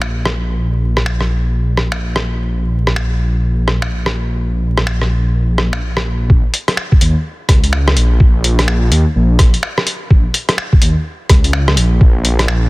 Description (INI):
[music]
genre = future garage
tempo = 126 BPM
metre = 4/4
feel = swing 62% on 16ths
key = Bb minor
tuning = A4 = 440 Hz
[part]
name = swelling detuned saw bass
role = bass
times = 0.0-12.7 s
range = Bb1 to Eb2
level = -14 LUFS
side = equal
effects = sidechain pumping
[part]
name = lo-fi sampler-style drum kit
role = drums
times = 0.0-12.6 s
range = finger snaps, hi-hat, rim click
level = -18 LUFS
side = equal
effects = soft clipping on snare
[part]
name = electronic kick drum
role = drums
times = 6.3-12.1 s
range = none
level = -9 LUFS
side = equal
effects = none
[sound]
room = little or no reverb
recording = dense, heavily limited modern master, vinyl crackle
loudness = -12 LUFS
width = side -22 dB against mid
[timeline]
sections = 0.0-6.3 A section; 6.3-12.7 B section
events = none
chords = none